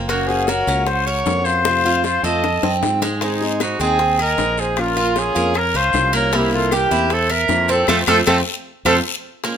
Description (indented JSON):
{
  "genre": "latin, Cuban son and guajira",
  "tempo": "154 BPM",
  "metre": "4/4",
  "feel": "straight",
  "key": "unclear",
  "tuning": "A4 = 440 Hz",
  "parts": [
    { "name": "picked acoustic archtop guitar", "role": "accompaniment", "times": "0.0-9.6 s", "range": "C3 to Ab4", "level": "-24 LUFS", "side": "left 1 dB", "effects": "none" },
    { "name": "Cuban tres", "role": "arpeggios", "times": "0.0-9.6 s", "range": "Ab3 to Bb4", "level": "-22 LUFS", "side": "right 4 dB", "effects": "none" },
    { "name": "fretless electric bass", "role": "bass", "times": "0.0-9.0 s", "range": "Gb1 to Ab2", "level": "-24 LUFS", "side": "equal", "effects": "none" },
    { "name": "warm trumpet", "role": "melody", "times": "0.1-9.0 s", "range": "Eb4 to Eb5", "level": "-20 LUFS", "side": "left 1 dB", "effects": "none" },
    { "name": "hollow concert flute", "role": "second line", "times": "0.1-9.0 s", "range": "G4 to A5", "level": "-25 LUFS", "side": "right 5 dB", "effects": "none" },
    { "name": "bongos", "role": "percussion", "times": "0.1-9.6 s", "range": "none", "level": "-25 LUFS", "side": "left 7 dB", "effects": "none" },
    { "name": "guiro", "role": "percussion", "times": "0.1-9.6 s", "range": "none", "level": "-31 LUFS", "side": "left 7 dB", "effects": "none" },
    { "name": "claves", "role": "percussion", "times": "3.6-8.9 s", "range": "none", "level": "-28 LUFS", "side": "left 6 dB", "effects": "none" }
  ],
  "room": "moderate large studio reverb, RT60 0.9 s",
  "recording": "minimal, uncompressed stereo recording",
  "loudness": "-15 LUFS",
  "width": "side -8 dB against mid",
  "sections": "0.0-9.4 A section",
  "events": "drum fill 1.7-3.2, 7.9-9.4; band accent 7.9-9.4",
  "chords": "0.1 Gb; 1.7 F; 3.2 Ab; 4.8 Bbm; 6.3 C7; 7.9 F",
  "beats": "| 0.10 0.49 0.88 1.27 | 1.66 2.05 2.44 2.83 | 3.22 3.60 3.99 4.38 | 4.77 5.16 5.55 5.94 | 6.33 6.72 7.11 7.50 | 7.88 8.27 8.66 9.05 | 9.44"
}